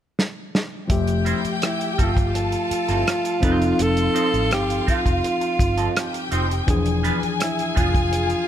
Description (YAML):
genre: lush 1970s-style soul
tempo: 83 BPM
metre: 4/4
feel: straight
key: F major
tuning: A4 = 440 Hz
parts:
  - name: warm soul drum kit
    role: drums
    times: 0.2-8.5 s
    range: hi-hat, kick drum, rim click, snare drum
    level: -23 LUFS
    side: equal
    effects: none
  - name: warm studio string section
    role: second line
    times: 0.9-8.5 s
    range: F4 to A5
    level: -28 LUFS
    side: left 2 dB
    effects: none
  - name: tine electric piano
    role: accompaniment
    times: 0.9-8.5 s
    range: E3 to E5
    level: -25 LUFS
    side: left 2 dB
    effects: none
  - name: vintage muted fingered electric bass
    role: bass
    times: 0.9-8.3 s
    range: E1 to A1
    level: -25 LUFS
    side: equal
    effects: none
  - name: clean electric guitar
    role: riff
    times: 1.2-8.3 s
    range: F3 to C5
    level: -30 LUFS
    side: right 4 dB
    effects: wah, tube saturation
  - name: warm alto saxophone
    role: melody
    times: 1.7-8.5 s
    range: E4 to A4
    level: -24 LUFS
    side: right 1 dB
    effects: none
room: light reverb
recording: none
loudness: -19 LUFS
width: side -10 dB against mid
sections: 0.9-8.5 A section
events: drum fill 0.2-0.9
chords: 0.0 N.C.; 0.9 Fmaj9; 3.4 F7; 6.7 E7b9